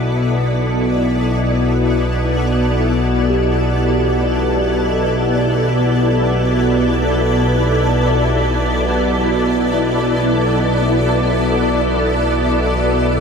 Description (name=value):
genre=dark ambient drone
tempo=free time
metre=none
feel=none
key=unclear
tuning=A4 = 440 Hz
part: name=granular cloud pad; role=sustained chords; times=0.0-13.2 s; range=B3 to D5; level=-17 LUFS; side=left 1 dB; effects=built-in reverb, ensemble chorus
part: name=analog drone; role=drone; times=0.0-13.2 s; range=B1 to B2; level=-16 LUFS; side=equal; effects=chorus
part: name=quartz singing bowl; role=texture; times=3.3-13.2 s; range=G4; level=-27 LUFS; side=right 1 dB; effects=none
room=wet huge ambient reverb, RT60 8.4 s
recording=dreamy mix soaked in reverb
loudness=-14 LUFS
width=side -6 dB against mid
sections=0.0-13.2 A section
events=fade-in on ambient pad 0.0-13.2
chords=0.0 Bm7